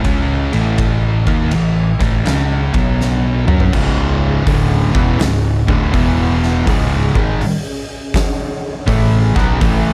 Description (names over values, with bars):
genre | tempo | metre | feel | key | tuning
stoner and doom metal | 82 BPM | 4/4 | swing 66% on 8ths | C# minor | A4 = 440 Hz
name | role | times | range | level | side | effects
thick fuzz guitar | riff | 0.0-9.9 s | C#2 to F#4 | -21 LUFS | equal | distortion
thick fuzz guitar | riff | 0.0-9.9 s | C#2 to F#4 | -23 LUFS | equal | distortion
fingered electric bass | bass | 0.0-9.9 s | C#1 to F#2 | -21 LUFS | equal | tube saturation
oversized low-tuned drum kit | drums | 0.0-9.8 s | crash cymbal, hi-hat, kick drum, ride cymbal, snare drum, toms | -20 LUFS | equal | none
string machine, violas | sustained chords | 2.7-9.9 s | A3 to F#5 | -31 LUFS | equal | none
distorted electric guitar | riff | 3.7-9.9 s | C#2 to B3 | -24 LUFS | equal | overdrive
room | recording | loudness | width
light reverb | dark, warm production | -15 LUFS | mono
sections
0.0-3.7 A section; 3.7-9.9 B section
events
drum fill 3.0-3.7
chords
0.0 A5; 2.6 B5; 3.4 A5; 3.7 C#m; 5.9 E5; 6.7 C#m